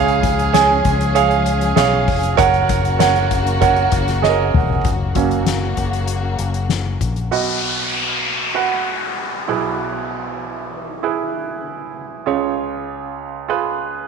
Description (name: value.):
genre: piano-driven pop.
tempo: 97 BPM.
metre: 4/4.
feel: straight.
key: unclear.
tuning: A4 = 441 Hz.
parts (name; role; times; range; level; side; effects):
clear concert grand piano; accompaniment; 0.0-14.1 s; B1 to G#5; -18 LUFS; right 8 dB; none.
warm studio string section; sustained chords; 0.0-7.3 s; C#3 to G#4; -24 LUFS; left 4 dB; none.
fingered electric bass; bass; 0.0-7.3 s; E1 to C#2; -21 LUFS; left 2 dB; none.
soft-mallet drum kit; drums; 0.1-7.3 s; hi-hat, kick drum, snare drum, toms; -21 LUFS; left 6 dB; none.
downlifter; sound effects; 7.3-12.3 s; none; -24 LUFS; left 3 dB; none.
room: moderate echo chamber reverb, RT60 2.4 s.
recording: 1960s-style stereo with parts hard left and right.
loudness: -16 LUFS.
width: side -6 dB against mid.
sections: 0.0-4.8 A section; 4.8-7.3 B section; 7.3-14.1 C section.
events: drum fill 4.2-4.8; grand piano solo 4.8-7.3.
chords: 0.0 C#; 2.4 F#; 7.3 B; 9.5 E/B; 12.3 C#.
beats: 0.54 1.15 1.77 | 2.38 3.00 3.62 4.23 | 4.85 5.46 6.08 6.70 | 7.32 7.93 8.55 9.17 | 9.79 10.40 11.02 11.64 | 12.26 12.88 13.49.